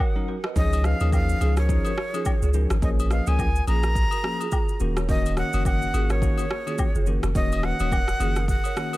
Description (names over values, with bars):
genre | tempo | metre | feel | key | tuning
afrobeats | 106 BPM | 4/4 | swing 58% on 16ths | Eb minor | A4 = 441 Hz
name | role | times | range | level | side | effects
breathy bright jazz flute | melody | 0.0-9.0 s | Db5 to Bb5 | -30 LUFS | equal | tape echo
balafon | riff | 0.0-9.0 s | F4 to Eb5 | -34 LUFS | right 6 dB | none
woodblock and agogo bells | percussion | 0.0-9.0 s | none | -36 LUFS | left 5 dB | none
bell-like tine electric piano | accompaniment | 0.2-9.0 s | Eb3 to Bb4 | -30 LUFS | left 3 dB | medium stereo tremolo
afro-pop drum kit | drums | 0.4-9.0 s | kick drum, rim click, shaker | -26 LUFS | equal | none
punchy sub bass | bass | 0.6-8.6 s | Eb1 to Eb2 | -23 LUFS | equal | none
room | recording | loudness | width
studio ambience | none | -21 LUFS | side -17 dB against mid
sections
0.0-9.0 A section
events
break 0.0-0.6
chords
0.0 Ebm7; 0.6 Dbadd9; 2.8 Bbm7; 4.8 Ebm7